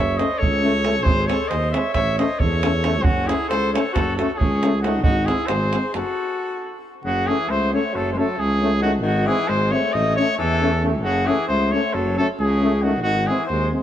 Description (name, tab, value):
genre	balkan folk, Balkan brass band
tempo	270 BPM (eighths)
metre	9/8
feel	straight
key	F# dorian sharp4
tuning	A4 = 440 Hz
part	clear trumpet	melody	0.0-13.7 s	F#4 to E5	-23 LUFS	right 1 dB	none
part	clear alto saxophone	second line	0.0-13.7 s	C#3 to C#5	-26 LUFS	left 3 dB	none
part	mellow tuba	bass	0.0-13.7 s	F#1 to E2	-23 LUFS	equal	none
part	brilliant trombone	accompaniment	0.2-13.8 s	G#3 to A3	-30 LUFS	right 2 dB	none
part	dark euphonium	accompaniment	0.2-13.8 s	B#3 to C#4	-27 LUFS	left 4 dB	none
part	davul	percussion	0.2-6.1 s	none	-23 LUFS	right 2 dB	none
room	moderate plate reverb, RT60 3.2 s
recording	heard from further back in the room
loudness	-18 LUFS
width	side -11 dB against mid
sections	0.0-7.0 A section; 7.0-13.8 A section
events	stop 6.0-7.0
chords	0.0 F#m; 1.1 G#; 1.9 A; 3.1 F#m; 5.1 G#; 5.9 F#m; 9.0 G#; 9.9 A; 11.0 F#m; 13.0 G#